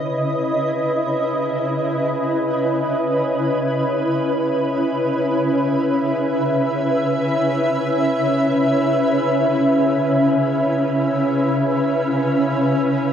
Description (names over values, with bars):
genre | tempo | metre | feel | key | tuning
ambient | free time | none | none | C# minor | A4 = 441 Hz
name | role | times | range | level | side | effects
shimmering ambient pad | solo | 0.0-13.1 s | C#3 to E5 | -17 LUFS | equal | chorus, built-in reverb, dub echo
room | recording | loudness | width
wet spring reverb, RT60 3.0 s | echo-heavy mix | -17 LUFS | side -8 dB against mid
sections
0.0-13.1 A section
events
none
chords
0.0 C#m7